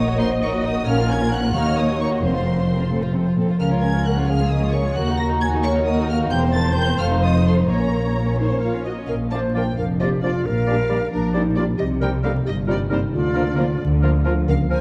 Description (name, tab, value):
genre	cinematic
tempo	89 BPM (dotted quarters)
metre	6/8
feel	straight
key	Bb minor, Bb major from 9.1 s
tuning	A4 = 441 Hz
part	rich studio violin section	melody	0.0-14.8 s	Bb4 to Bb6	-34 LUFS	equal	none
part	vibraphone with medium hard mallets	melody	0.0-8.8 s	Bb4 to Bb5	-28 LUFS	equal	none
part	warm studio violin section	second line	0.0-14.3 s	Bb3 to Eb5	-31 LUFS	equal	none
part	warm studio viola section	accompaniment	0.0-14.3 s	F3 to F5	-32 LUFS	equal	none
part	concert harp	arpeggios	0.0-14.8 s	Bb2 to C5	-27 LUFS	equal	none
part	dark chamber cello section	bass	0.0-14.8 s	Db2 to D3	-26 LUFS	equal	none
part	rich studio double bass section	bass	0.0-14.8 s	E1 to Eb2	-26 LUFS	equal	none
part	hollow concert flute	second line	8.4-14.8 s	D4 to C5	-28 LUFS	equal	none
part	clear oboe	second line	9.3-14.8 s	Bb4 to D5	-36 LUFS	equal	none
part	dark bassoon	accompaniment	9.3-14.8 s	F3 to G3	-33 LUFS	equal	none
part	warm French horn section	sustained chords	9.3-14.8 s	Bb3 to G4	-37 LUFS	equal	none
room	moderate scoring stage reverb, RT60 1.8 s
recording	dark, warm production, vinyl crackle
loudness	-20 LUFS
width	mono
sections	0.0-9.1 A section; 9.1-14.8 B section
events	none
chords	0.0 Ebm/Bb; 0.9 Bbm; 1.5 Ebm; 2.2 Fsus4; 2.9 F; 3.6 Bbm/Db; 5.0 Ebm; 6.3 C7/E; 7.0 F7; 7.7 Bbm; 9.1 Bb; 10.5 Gm7/Bb; 11.8 Cm7; 13.1 Bb/D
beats	0.20 | 0.87 1.54 | 2.22 2.90 | 3.60 4.29 | 4.96 5.65 | 6.32 7.00 | 7.69 8.39 | 9.09 9.78 | 10.45 11.12 | 11.80 12.47 | 13.13 13.80 | 14.47